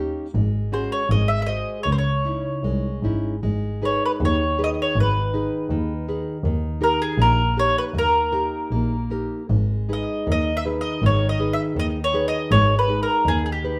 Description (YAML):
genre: fado-style ballad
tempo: 79 BPM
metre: 2/4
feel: rubato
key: C# harmonic minor, G# harmonic minor from 3.4 s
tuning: A4 = 440 Hz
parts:
  - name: nylon-string guitar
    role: accompaniment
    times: 0.0-13.8 s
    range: C#3 to B#4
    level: -29 LUFS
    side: equal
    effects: none
  - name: dark double bass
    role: bass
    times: 0.0-13.7 s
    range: G#1 to D#2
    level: -25 LUFS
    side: equal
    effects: none
  - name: mandolin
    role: melody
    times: 0.7-13.8 s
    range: G4 to E5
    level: -25 LUFS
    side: equal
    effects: slapback echo
room: moderate studio reverb, RT60 0.8 s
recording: band playing live in one room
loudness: -22 LUFS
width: mono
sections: 0.0-3.4 A section; 3.4-13.8 B section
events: none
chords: 0.3 G#7sus4; 1.1 G#7; 1.8 C#madd9; 3.4 G#m; 6.4 D#; 9.5 G#m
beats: | 0.33 1.09 | 1.85 2.63 | 3.42 4.20 | 4.95 5.69 | 6.43 7.18 | 7.93 8.71 | 9.49 10.27 | 11.02 11.76 | 12.50 13.25